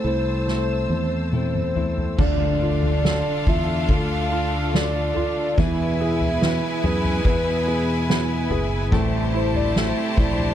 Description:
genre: pop ballad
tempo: 71 BPM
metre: 4/4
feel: straight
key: D minor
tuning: A4 = 440 Hz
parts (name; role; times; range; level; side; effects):
- soft octave-layered synth lead; melody; 0.0-10.5 s; B4 to F5; -27 LUFS; left 2 dB; chorus, phaser
- warm concert grand piano; accompaniment; 0.0-10.5 s; D3 to A4; -27 LUFS; right 6 dB; none
- clear symphonic string section; sustained chords; 0.0-10.5 s; B2 to E6; -33 LUFS; left 1 dB; none
- flamenco guitar; arpeggios; 0.0-10.5 s; A2 to B4; -32 LUFS; left 12 dB; none
- mellow fretless electric bass; bass; 0.0-10.5 s; F#1 to F#2; -25 LUFS; equal; none
- soft-mallet drum kit; drums; 0.5-10.5 s; crash cymbal, kick drum, snare drum, toms; -24 LUFS; equal; none
- bright studio violin section; second line; 2.2-10.5 s; D4 to A5; -29 LUFS; left 1 dB; tape echo
- impact; sound effects; 2.3-5.6 s; none; -32 LUFS; equal; none
room: little or no reverb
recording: none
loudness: -19 LUFS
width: side -10 dB against mid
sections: 0.0-2.2 A section; 2.2-10.5 B section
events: drum fill 0.5-2.2; impact 2.2-5.6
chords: 0.0 Am; 2.2 Dm; 5.6 E; 8.9 Am7

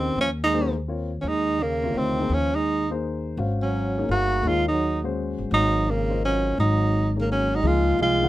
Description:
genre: modal jazz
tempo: 169 BPM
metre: 3/4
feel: swing 64% on 8ths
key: unclear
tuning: A4 = 437 Hz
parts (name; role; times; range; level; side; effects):
- warm tenor saxophone; melody; 0.0-8.3 s; Bb3 to Gb4; -23 LUFS; right 1 dB; none
- breathy trombone; second line; 0.0-8.3 s; Db3 to Bb3; -31 LUFS; right 6 dB; none
- dark grand piano; accompaniment; 0.0-8.3 s; C3 to Gb5; -30 LUFS; left 4 dB; none
- upright bass; bass; 0.0-8.3 s; G1 to Eb2; -26 LUFS; equal; none
room: little or no reverb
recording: close, detailed microphones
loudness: -21 LUFS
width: side -15 dB against mid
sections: 0.0-7.6 A section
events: none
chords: 0.0 Eb9sus4; 3.4 Ab9sus4; 7.6 Dbmaj9

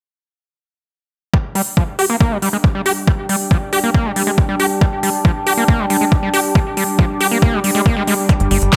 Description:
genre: psychedelic trance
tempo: 138 BPM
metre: 4/4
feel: straight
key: unclear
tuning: A4 = 440 Hz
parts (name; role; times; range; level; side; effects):
- overtone-sweeping drone; sustained chords; 2.2-8.8 s; G3 to G4; -27 LUFS; equal; chorus, built-in reverb, sidechain pumping
- screaming distorted acid line; riff; 1.3-8.8 s; F3 to G4; -21 LUFS; equal; distortion, chorus, cassette tape, sidechain pumping, dub echo
- electronic kick drum; drums; 1.3-8.8 s; none; -16 LUFS; equal; overdrive
- warbly tape-like pad; texture; 2.5-8.8 s; D4 to D6; -26 LUFS; equal; chorus, built-in reverb, sidechain pumping
- big-room dance drum kit; drums; 1.6-8.8 s; handclaps, hi-hat; -24 LUFS; equal; overdrive
- tight sequencer bass; bass; 8.4-8.7 s; G1; -17 LUFS; equal; none
room: light reverb, digital ambience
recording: none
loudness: -16 LUFS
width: mono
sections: 1.3-8.8 A section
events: filter sweep on acid bass 1.3-8.8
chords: 1.3 G5

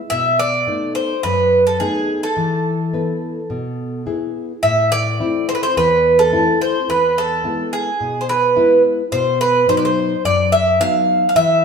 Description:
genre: greek folk, Greek bouzouki band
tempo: 107 BPM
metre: 4/4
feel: straight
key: A harmonic minor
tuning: A4 = 440 Hz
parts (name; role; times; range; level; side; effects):
- Greek bouzouki; melody; 0.1-11.6 s; G#4 to F5; -15 LUFS; right 1 dB; none
- nylon-string guitar; accompaniment; 0.1-11.6 s; E2 to B4; -21 LUFS; left 3 dB; none
room: wet stone room reverb, RT60 1.4 s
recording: band playing live in one room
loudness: -14 LUFS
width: side -6 dB against mid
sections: 0.0-4.6 A section; 4.6-11.6 A section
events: none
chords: 0.1 B7; 2.4 E; 4.6 Am; 6.9 E; 9.1 B

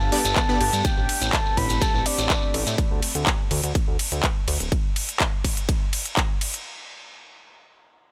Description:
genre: progressive house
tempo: 124 BPM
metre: 4/4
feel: straight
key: unclear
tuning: A4 = 439 Hz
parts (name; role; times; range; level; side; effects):
- soft octave-layered synth lead; melody; 0.0-2.8 s; D5 to B5; -30 LUFS; equal; chorus, dub echo
- evolving wavetable pad; sustained chords; 0.0-2.8 s; A3 to G4; -37 LUFS; equal; phaser, built-in reverb, sidechain pumping
- fat analog bass; bass; 0.0-4.7 s; D1 to A2; -29 LUFS; equal; sidechain pumping
- shekere; percussion; 0.0-2.8 s; none; -32 LUFS; equal; none
- unison pluck; arpeggios; 0.1-0.6 s; B3 to G5; -35 LUFS; equal; vintage 12-bit sampler grit, sidechain pumping, dub echo
- supersaw stab; stabs; 0.1-0.6 s; G2 to D5; -35 LUFS; equal; none
- big-room dance drum kit; drums; 0.1-6.6 s; handclaps, hi-hat, ride cymbal; -29 LUFS; equal; none
- electronic kick drum; drums; 0.4-6.3 s; none; -26 LUFS; equal; none
room: little or no reverb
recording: none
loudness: -23 LUFS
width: mono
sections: 0.0-6.7 A section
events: drop 0.0-6.7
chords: 0.0 G; 0.8 Am7; 2.8 N.C.

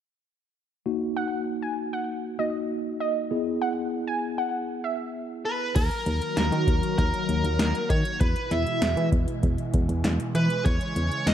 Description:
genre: synth-pop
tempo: 98 BPM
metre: 4/4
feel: straight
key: unclear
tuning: A4 = 440 Hz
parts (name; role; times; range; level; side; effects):
- mellow tine electric piano; accompaniment; 0.9-5.7 s; A#3 to G#4; -29 LUFS; left 1 dB; slow stereo tremolo
- warbly dusty pluck; second line; 1.2-5.0 s; D#5 to G#5; -30 LUFS; right 2 dB; chorus, phaser, slapback echo
- smooth overdriven lead guitar; melody; 5.5-11.3 s; A#4 to E5; -28 LUFS; right 1 dB; slapback echo
- phased analog pad; sustained chords; 5.8-11.3 s; B2 to F#4; -30 LUFS; equal; phaser, chorus
- solid FM bass; bass; 5.8-11.3 s; D#2 to E3; -25 LUFS; equal; none
- electro analog drum machine; drums; 5.8-11.3 s; crash cymbal, hi-hat, kick drum, snare drum; -26 LUFS; equal; none
room: light reverb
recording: dark, warm production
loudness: -24 LUFS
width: side -10 dB against mid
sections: 0.9-5.8 A section; 5.8-11.3 B section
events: none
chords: 0.9 D#m; 3.3 E; 5.8 D#m; 8.2 E; 10.7 C#m/E

